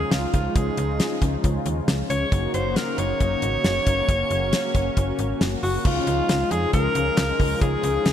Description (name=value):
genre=synth-pop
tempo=136 BPM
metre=4/4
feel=straight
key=Db major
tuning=A4 = 440 Hz
part: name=bright alto saxophone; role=melody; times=0.0-8.1 s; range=F4 to Db5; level=-25 LUFS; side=equal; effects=ping-pong delay
part: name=mellow synth brass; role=accompaniment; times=0.0-8.1 s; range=Ab3 to Gb4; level=-29 LUFS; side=left 3 dB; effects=chorus
part: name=warm analog pad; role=sustained chords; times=0.0-8.1 s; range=Db3 to Eb4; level=-31 LUFS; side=equal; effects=chorus, tremolo
part: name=slap-like FM bass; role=bass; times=0.0-8.1 s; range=Gb1 to F2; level=-26 LUFS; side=equal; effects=none
part: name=damped 70s drum kit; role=drums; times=0.1-8.1 s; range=crash cymbal, handclaps, hi-hat, kick drum, snare drum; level=-24 LUFS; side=equal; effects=none
room=moderate lush hall reverb, RT60 1.8 s, small room reverb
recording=bright 1980s-style digital production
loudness=-20 LUFS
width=side -10 dB against mid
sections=0.0-5.8 A section; 5.8-8.1 B section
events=none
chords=0.0 Dbadd9; 2.3 Gb6; 5.8 Dbadd9